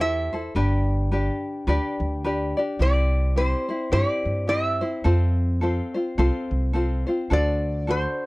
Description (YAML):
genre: Hawaiian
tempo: 106 BPM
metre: 4/4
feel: swing 58% on 8ths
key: unclear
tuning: A4 = 438 Hz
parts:
  - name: metal-body resonator slide guitar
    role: melody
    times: 0.0-8.3 s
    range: C5 to E5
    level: -25 LUFS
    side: equal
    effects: none
  - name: tenor ukulele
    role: accompaniment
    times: 0.0-8.3 s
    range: C4 to D5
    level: -26 LUFS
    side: left 1 dB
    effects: none
  - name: upright bass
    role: bass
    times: 0.0-8.0 s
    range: G1 to G2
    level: -23 LUFS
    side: equal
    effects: none
room: little or no reverb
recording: dry, close 1970s-style studio recording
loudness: -21 LUFS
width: side -22 dB against mid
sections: 0.0-8.3 A section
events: none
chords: 0.0 Am7; 0.6 G; 2.8 C; 5.1 F; 7.3 D7